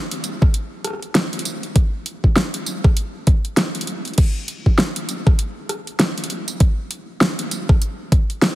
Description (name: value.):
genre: glitch hop.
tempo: 99 BPM.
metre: 4/4.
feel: swing 59% on 16ths.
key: none.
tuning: none.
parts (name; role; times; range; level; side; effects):
pop drum kit; drums; 0.1-8.6 s; crash cymbal, hi-hat, rim click, snare drum, tambourine; -21 LUFS; equal; overdrive.
electronic kick drum; drums; 0.4-8.3 s; none; -15 LUFS; equal; overdrive.
room: light reverb.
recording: heavily compressed radio sound, multiband compression.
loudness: -17 LUFS.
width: side -16 dB against mid.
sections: 0.0-8.6 A section.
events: none.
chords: none.